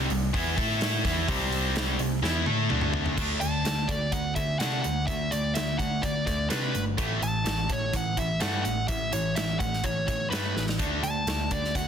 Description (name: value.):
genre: hard rock.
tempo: 126 BPM.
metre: 4/4.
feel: straight.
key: D mixolydian.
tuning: A4 = 438 Hz.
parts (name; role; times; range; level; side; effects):
distorted electric guitar; riff; 0.0-11.9 s; A2 to A4; -29 LUFS; equal; overdrive.
overdriven picked electric bass; bass; 0.0-11.9 s; G1 to C3; -31 LUFS; equal; none.
big rock drum kit; drums; 0.1-11.9 s; crash cymbal, hi-hat, kick drum, snare drum, toms; -31 LUFS; equal; none.
nasal lead guitar with a parked wah; melody; 3.4-11.9 s; B4 to A5; -30 LUFS; equal; overdrive.
room: light reverb, small room ambience.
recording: dense, heavily limited modern master.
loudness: -25 LUFS.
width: side -8 dB against mid.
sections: 0.0-3.2 A section; 3.2-11.9 B section.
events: drum fill 2.2-3.2, 10.6.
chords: 0.0 C5; 0.6 A5; 1.1 C5; 2.7 D5; 7.0 A5; 10.8 D5.